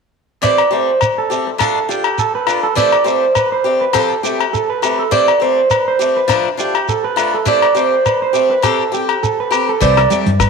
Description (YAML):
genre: highlife guitar band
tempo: 102 BPM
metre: 4/4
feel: swing 55% on 16ths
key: C major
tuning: A4 = 440 Hz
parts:
  - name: picked swing-style acoustic guitar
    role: accompaniment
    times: 0.4-10.3 s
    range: E3 to G4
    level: -20 LUFS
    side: left 11 dB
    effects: none
  - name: electric guitar through a small old amp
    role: arpeggios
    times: 0.4-10.5 s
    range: G4 to D5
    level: -15 LUFS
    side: right 5 dB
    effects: spring reverb, tape echo
  - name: shekere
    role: percussion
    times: 0.4-10.5 s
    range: none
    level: -23 LUFS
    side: right 3 dB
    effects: none
  - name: agogo bells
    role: percussion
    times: 0.6-10.5 s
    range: none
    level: -20 LUFS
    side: left 12 dB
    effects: none
  - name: fingered electric bass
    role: bass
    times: 9.8-10.5 s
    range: C2 to G2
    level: -15 LUFS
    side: left 2 dB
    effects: none
  - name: cloth-damped thuddy drum kit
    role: drums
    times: 9.8-10.5 s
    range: hi-hat, kick drum, rim click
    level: -20 LUFS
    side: left 4 dB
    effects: none
  - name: congas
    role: percussion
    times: 10.1-10.4 s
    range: none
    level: -21 LUFS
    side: right 5 dB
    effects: none
room: wet echo chamber reverb, RT60 1.6 s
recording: 1960s-style stereo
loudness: -12 LUFS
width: side -5 dB against mid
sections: 0.4-9.8 A section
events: none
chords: 0.4 C6; 1.6 Dm; 2.8 C6; 3.9 Fadd9; 5.1 C6; 6.3 Dm; 7.5 C6; 8.6 Am9; 9.8 C6